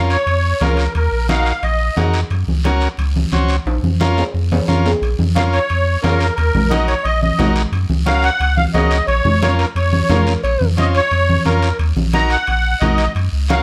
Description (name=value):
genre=latin, cumbia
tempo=177 BPM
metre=4/4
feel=straight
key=Bb minor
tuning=A4 = 442 Hz
part: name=overdriven combo organ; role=accompaniment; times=0.0-13.6 s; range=Db4 to C5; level=-24 LUFS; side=equal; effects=none
part: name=pure sine sub bass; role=bass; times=0.0-13.6 s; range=Bb1 to Gb2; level=-20 LUFS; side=equal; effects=none
part: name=musette accordion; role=melody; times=0.1-1.9, 5.4-13.6 s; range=Bb4 to Bb5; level=-21 LUFS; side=equal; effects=plate reverb
part: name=guiro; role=percussion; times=0.1-13.6 s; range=none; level=-34 LUFS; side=equal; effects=none
part: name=timbales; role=percussion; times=0.1-13.6 s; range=none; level=-30 LUFS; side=equal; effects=none
part: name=congas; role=percussion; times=0.3-13.6 s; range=none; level=-23 LUFS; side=equal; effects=none
part: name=breathy clarinet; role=second line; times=10.1-10.7 s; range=Bb4 to Db5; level=-24 LUFS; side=equal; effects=none
room=light reverb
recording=close, detailed microphones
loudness=-16 LUFS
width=mono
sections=0.0-5.0 A section; 5.0-13.6 A section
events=drum fill 3.7-5.0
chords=0.0 Bbm; 0.9 Ebm; 2.3 Gb; 3.7 Bbm; 6.4 Ebm; 7.7 Gb; 9.1 Bbm; 11.8 Ebm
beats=0.27 0.61 | 0.95 1.29 1.63 1.97 | 2.31 2.65 2.98 3.32 | 3.66 4.00 4.34 4.68 | 5.02 5.36 5.70 6.03 | 6.37 6.71 7.05 7.39 | 7.73 8.07 8.40 8.74 | 9.08 9.42 9.76 10.10 | 10.44 10.78 11.12 11.45 | 11.79 12.13 12.47 12.81 | 13.15 13.49